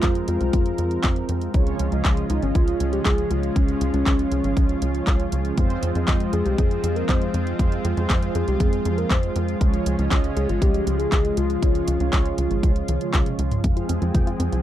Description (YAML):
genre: italo disco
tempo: 119 BPM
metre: 4/4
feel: straight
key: F minor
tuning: A4 = 438 Hz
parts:
  - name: soft octave-layered synth lead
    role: melody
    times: 0.0-13.1 s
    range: Db4 to C5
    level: -27 LUFS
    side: left 2 dB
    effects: chorus, tape echo
  - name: lush unison pad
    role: sustained chords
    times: 0.0-14.6 s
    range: F3 to Bb4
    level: -28 LUFS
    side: equal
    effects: chorus
  - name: mellow synth brass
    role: stabs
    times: 0.0-14.6 s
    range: Db3 to G5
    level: -29 LUFS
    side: right 4 dB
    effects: chorus
  - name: tight sequencer bass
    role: bass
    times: 0.0-14.6 s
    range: Ab1 to F2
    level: -25 LUFS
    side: equal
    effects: none
  - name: electronic kick drum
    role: drums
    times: 0.0-14.2 s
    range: none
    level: -21 LUFS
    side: equal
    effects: none
  - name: house drum kit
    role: drums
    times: 0.0-14.6 s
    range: handclaps, hi-hat, toms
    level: -28 LUFS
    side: equal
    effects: overdrive
  - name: analog pluck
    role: arpeggios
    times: 13.6-14.6 s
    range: F3 to F4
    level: -29 LUFS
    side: equal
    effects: chorus, tape echo
  - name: riser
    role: sound effects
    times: 14.4-14.6 s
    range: none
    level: -45 LUFS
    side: equal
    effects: none
room: little or no reverb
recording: dry, close 1970s-style studio recording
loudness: -19 LUFS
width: side -12 dB against mid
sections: 0.0-13.6 A section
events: drum fill 12.9-13.6, 13.6-14.6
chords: 0.0 Fm; 1.5 Db; 5.6 Fm; 9.6 Db; 13.6 Fm